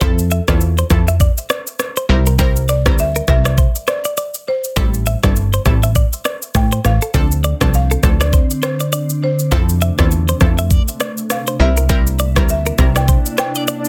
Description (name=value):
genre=afrobeats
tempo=101 BPM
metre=4/4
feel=swing 58% on 16ths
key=D minor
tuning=A4 = 441 Hz
part: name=buzzing marimba with medium mallets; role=melody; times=0.0-13.9 s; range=A4 to G5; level=-26 LUFS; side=equal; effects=tape echo
part: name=analog pluck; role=accompaniment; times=0.0-13.1 s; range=F3 to Bb4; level=-24 LUFS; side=equal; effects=chorus
part: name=direct-recorded clean electric guitar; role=riff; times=0.0-13.9 s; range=A4 to E5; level=-25 LUFS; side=equal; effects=tape echo
part: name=plucky analog bass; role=bass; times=0.0-13.2 s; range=G1 to A2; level=-18 LUFS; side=equal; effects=none
part: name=afro-pop drum kit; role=drums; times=0.0-13.9 s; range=kick drum, rim click, shaker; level=-18 LUFS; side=equal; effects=soft clipping on snare
part: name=glassy FM pad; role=sustained chords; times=7.6-13.9 s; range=C3 to E4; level=-26 LUFS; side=equal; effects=ensemble chorus, built-in reverb, sidechain pumping
part: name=swell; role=sound effects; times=13.0-13.9 s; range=none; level=-29 LUFS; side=equal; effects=none
room=little or no reverb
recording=dense, heavily limited modern master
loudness=-15 LUFS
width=mono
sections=0.0-7.1 A section; 7.1-13.9 B section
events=swell 13.0-13.9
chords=0.0 Fmaj7; 2.1 C7; 4.8 Am7; 7.1 Dm7; 9.5 Fmaj7; 11.6 C7